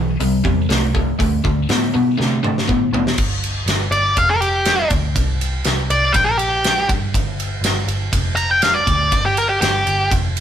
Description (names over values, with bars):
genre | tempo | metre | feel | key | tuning
blues rock power trio and southern rock | 121 BPM | 4/4 | straight | G mixolydian | A4 = 439 Hz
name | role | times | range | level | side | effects
biting overdriven guitar | riff | 0.0-3.2 s | G2 to B3 | -18 LUFS | left 1 dB | none
vintage muted picked electric bass | bass | 0.0-10.4 s | F1 to C3 | -22 LUFS | equal | none
big rock drum kit | drums | 0.2-10.4 s | crash cymbal, hi-hat, kick drum, ride cymbal, snare drum, toms | -20 LUFS | equal | none
octave-fuzz lead guitar | melody | 3.9-10.1 s | G4 to Bb5 | -16 LUFS | equal | distortion
room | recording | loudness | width
moderate studio reverb, RT60 0.9 s | band playing live in one room | -15 LUFS | side -9 dB against mid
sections
0.0-3.2 A section; 3.2-10.4 B section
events
drum fill 2.2-3.2; lead electric guitar solo 3.2-10.4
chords
0.2 C; 1.2 D5; 3.2 G5; 5.2 C5; 7.1 G5